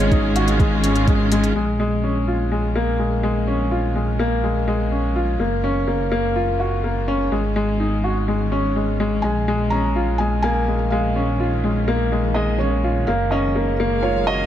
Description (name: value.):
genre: piano and strings electronica.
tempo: 125 BPM.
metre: 4/4.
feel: straight.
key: Bb minor.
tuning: A4 = 440 Hz.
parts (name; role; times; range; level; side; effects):
felt-muted upright piano; melody; 0.0-1.0, 9.2-14.5 s; Db5 to Bb5; -26 LUFS; right 2 dB; digital delay.
rich studio string section; sustained chords; 0.0-14.5 s; Eb3 to F5; -29 LUFS; right 2 dB; sidechain pumping.
clear upright piano; riff; 0.0-14.5 s; Ab3 to Gb4; -21 LUFS; left 2 dB; digital delay.
dark detuned saw bass; bass; 0.0-14.5 s; Gb1 to Bb1; -22 LUFS; right 1 dB; sidechain pumping.
electronic hi-hat; drums; 0.0-1.5 s; none; -30 LUFS; left 2 dB; overdrive.
electronic kick drum; drums; 0.1-1.2 s; none; -18 LUFS; right 1 dB; overdrive.
room: light reverb, small room ambience.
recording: none.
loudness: -18 LUFS.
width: side -11 dB against mid.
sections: 0.0-1.6 A section; 1.6-14.5 B section.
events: fade-in on string section 1.6-14.5.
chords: 0.0 Ab7sus4; 1.6 Bbm7; 5.4 Gbmaj7; 7.3 Ab7sus4; 9.2 Bbm7; 13.1 Gbmaj7.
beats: 0.12 0.60 1.08 | 1.56 2.04 2.52 3.00 | 3.48 3.96 4.44 4.92 | 5.40 5.88 6.36 6.84 | 7.32 7.80 8.28 8.76 | 9.24 9.72 10.20 10.68 | 11.16 11.64 12.12 12.60 | 13.08 13.56 14.04.